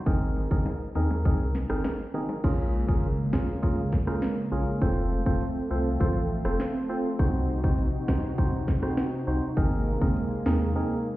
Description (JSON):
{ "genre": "dancehall", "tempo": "101 BPM", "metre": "4/4", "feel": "straight", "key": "Bb minor", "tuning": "A4 = 440 Hz", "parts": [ { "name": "percussive organ stab", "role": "accompaniment", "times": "0.1-10.9 s", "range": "C4 to C5", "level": "-31 LUFS", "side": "right 1 dB", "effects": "chorus" }, { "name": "warm sub bass", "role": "bass", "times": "0.1-10.7 s", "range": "F1 to Eb2", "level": "-28 LUFS", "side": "equal", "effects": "none" }, { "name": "island pop drum kit", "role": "drums", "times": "0.1-10.6 s", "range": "crash cymbal, hi-hat, kick drum, rim click, snare drum", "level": "-27 LUFS", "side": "equal", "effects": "overdrive" }, { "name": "bongos", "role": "percussion", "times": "0.4-2.4 s", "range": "none", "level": "-37 LUFS", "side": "left 2 dB", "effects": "none" }, { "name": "warm analog pad", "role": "sustained chords", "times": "2.4-11.2 s", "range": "C3 to Gb4", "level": "-30 LUFS", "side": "equal", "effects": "chorus, sidechain pumping" } ], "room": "light reverb", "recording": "heard muffled through a wall, stone room reverb, EQ", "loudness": "-24 LUFS", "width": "side -16 dB against mid", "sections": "0.0-2.4 A section; 2.4-11.2 B section", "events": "break 10.8-11.2", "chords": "0.1 Abadd9; 2.4 Bbm7; 4.8 F; 7.2 Cdim; 9.6 Abadd9", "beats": "| 0.06 0.66 1.25 1.85 | 2.44 3.04 3.63 4.22 | 4.82 5.41 6.00 6.60 | 7.19 7.79 8.38 8.97 | 9.57 10.16 10.76" }